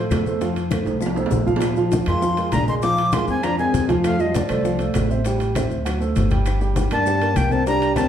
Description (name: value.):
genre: Afro-Cuban jazz.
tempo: 198 BPM.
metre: 4/4.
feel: straight.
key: unclear.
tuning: A4 = 440 Hz.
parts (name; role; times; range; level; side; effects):
breathy bright jazz flute; melody; 0.0-8.1 s; C5 to D6; -23 LUFS; equal; none.
breathy trombone; second line; 0.0-8.1 s; Eb3 to F4; -25 LUFS; left 3 dB; none.
warm concert grand piano; accompaniment; 0.0-8.1 s; F3 to G5; -23 LUFS; right 2 dB; none.
upright bass; bass; 0.0-8.1 s; G1 to G2; -24 LUFS; equal; none.
bongos; percussion; 0.1-8.1 s; none; -31 LUFS; left 5 dB; none.
claves; percussion; 0.1-8.1 s; none; -42 LUFS; left 5 dB; none.
congas; percussion; 0.1-8.1 s; none; -27 LUFS; left 2 dB; none.
maracas; percussion; 0.1-8.1 s; none; -42 LUFS; left 8 dB; none.
timbales; percussion; 0.1-8.1 s; none; -32 LUFS; right 5 dB; none.
room: wet large studio reverb, RT60 1.1 s.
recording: heard from further back in the room.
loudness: -18 LUFS.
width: side -9 dB against mid.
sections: 0.0-8.1 A section.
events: drum fill 0.9-1.6.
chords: 0.0 F; 1.6 Bb9; 4.0 F6; 5.3 Am7; 5.9 D7; 6.5 Gm.